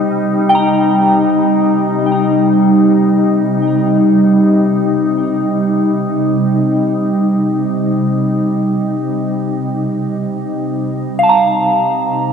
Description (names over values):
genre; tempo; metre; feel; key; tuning
ambient; free time; none; none; C dorian; A4 = 440 Hz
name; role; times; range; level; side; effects
glassy FM pad; sustained chords; 0.0-12.3 s; C3 to Eb4; -12 LUFS; equal; ensemble chorus, built-in reverb
soft synth bell; arpeggios; 0.0-12.3 s; F5 to Bb5; -15 LUFS; right 1 dB; chorus, phaser, ping-pong delay
room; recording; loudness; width
wet cathedral reverb, RT60 6.2 s; none; -11 LUFS; side -7 dB against mid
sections
0.0-12.3 A section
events
none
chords
0.0 Cm